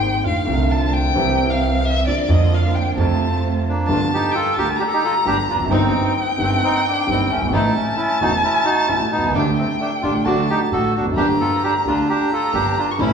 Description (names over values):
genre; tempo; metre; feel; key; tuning
tango; 132 BPM; 4/4; rubato; G minor from 3.9 s; A4 = 440 Hz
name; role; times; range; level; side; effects
dark violin; second line; 0.0-13.1 s; D5 to C#6; -22 LUFS; left 2 dB; none
warm grand piano; accompaniment; 0.0-13.1 s; E1 to G4; -22 LUFS; equal; none
warm studio string section; stabs; 0.0-13.1 s; E3 to Ab4; -29 LUFS; right 2 dB; none
upright bass; bass; 0.0-13.1 s; E1 to F2; -23 LUFS; right 2 dB; none
bandoneon; melody; 3.7-13.1 s; G3 to Bb4; -20 LUFS; right 1 dB; none
room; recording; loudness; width
wet concert hall reverb, RT60 2.0 s; recorded in a church or concert hall, small room ambience; -16 LUFS; side -6 dB against mid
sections
0.0-3.9 A section; 3.9-13.1 B section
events
violin solo 0.0-3.9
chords
0.2 F6; 1.2 C; 2.1 Bb/F; 3.0 F; 3.9 Gm7; 5.7 Cm7/G; 7.5 A; 9.3 Dsus4; 10.3 D; 11.2 Gm